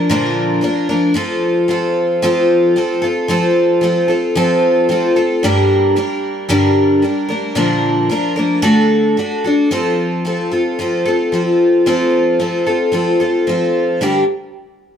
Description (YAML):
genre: rock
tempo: 112 BPM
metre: 4/4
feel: straight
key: unclear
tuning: A4 = 437 Hz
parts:
  - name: picked twelve-string acoustic guitar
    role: solo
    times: 0.0-14.2 s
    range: G2 to Bb4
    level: -13 LUFS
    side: equal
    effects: none
room: light reverb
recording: dark, warm production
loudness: -13 LUFS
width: side -8 dB against mid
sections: 0.0-9.7 A section; 9.7-14.0 B section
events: none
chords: 0.0 Bb; 1.2 F; 5.4 Gm; 7.6 Bb; 8.6 D; 9.7 F; 14.0 Gm